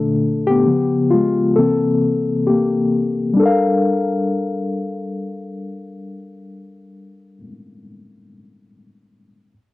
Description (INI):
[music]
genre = R&B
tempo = 66 BPM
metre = 4/4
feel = swing 59% on 16ths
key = G dorian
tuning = A4 = 440 Hz
[part]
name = reed electric piano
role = solo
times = 0.0-9.5 s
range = Bb2 to F5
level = -16 LUFS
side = left 2 dB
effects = harmonic tremolo, cassette tape
[sound]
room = light reverb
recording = home recording on cassette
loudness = -15 LUFS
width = side -17 dB against mid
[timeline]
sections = 0.0-3.4 A section; 3.4-7.0 B section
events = reed electric piano solo 0.0-3.4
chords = 0.0 Bbmaj7; 0.7 C#7; 1.6 C6; 3.4 Gm9